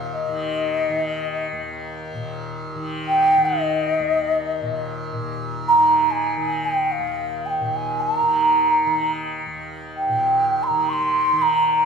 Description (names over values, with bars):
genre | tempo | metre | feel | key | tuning
indian classical, Hindustani | free time | none | none | Eb raga khamaj | A4 = 441 Hz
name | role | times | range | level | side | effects
mellow bansuri | melody | 0.0-11.9 s | Eb5 to Db6 | -18 LUFS | right 1 dB | none
tanpura | drone | 0.0-11.9 s | Eb2 to Eb3 | -28 LUFS | left 1 dB | none
room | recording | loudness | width
moderate concert hall reverb, RT60 1.8 s | minimal, uncompressed stereo recording | -19 LUFS | side -6 dB against mid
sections
0.0-5.1 A section; 5.1-11.9 A section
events
none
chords
none